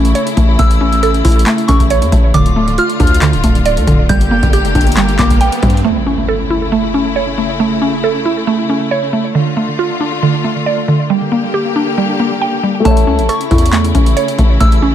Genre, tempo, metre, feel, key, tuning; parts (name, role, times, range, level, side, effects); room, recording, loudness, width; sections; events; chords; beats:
hip hop, trap; 137 BPM; 4/4; half-time; A4 = 442 Hz
soft synth bell; second line; 0.0-5.4, 12.8-14.9 s; A5 to G6; -20 LUFS; left 1 dB; chorus, digital delay
clear symphonic string section; sustained chords; 0.0-14.9 s; C#3 to G4; -19 LUFS; left 2 dB
mallet-like synth pluck; arpeggios; 0.0-14.9 s; D3 to G5; -15 LUFS; right 3 dB; chorus, low-pass filter, digital delay
distorted 808-style bass; bass; 0.0-5.8, 12.9-14.9 s; C#1 to G2; -15 LUFS; equal; distortion
booming analog drum machine; drums; 0.0-5.8, 12.9-14.8 s; handclaps, hi-hat, kick drum; -13 LUFS; equal
riser and impact; sound effects; 4.1-7.6 s; -24 LUFS; equal
felt-muted upright piano; accompaniment; 12.8-14.9 s; A3 to E5; -20 LUFS; left 5 dB; low-pass filter
light reverb; -10 LUFS; side -10 dB against mid
0.0-5.8 A section; 5.8-14.9 B section
break 0.0-5.8; riser 4.1-5.8; impact 5.8-7.6
0.0 A; 2.3 Dm; 4.1 Gm; 5.8 A; 9.3 Dm; 11.1 Gm; 12.9 A
0.15 | 0.59 1.03 1.47 1.90 | 2.34 2.78 3.22 3.66 | 4.09 4.53 4.97 5.41 | 5.84 6.28 6.72 7.16 | 7.60 8.04 8.47 8.91 | 9.35 9.79 10.22 10.66 | 11.10 11.54 11.98 12.41 | 12.85 13.29 13.73 14.17 | 14.60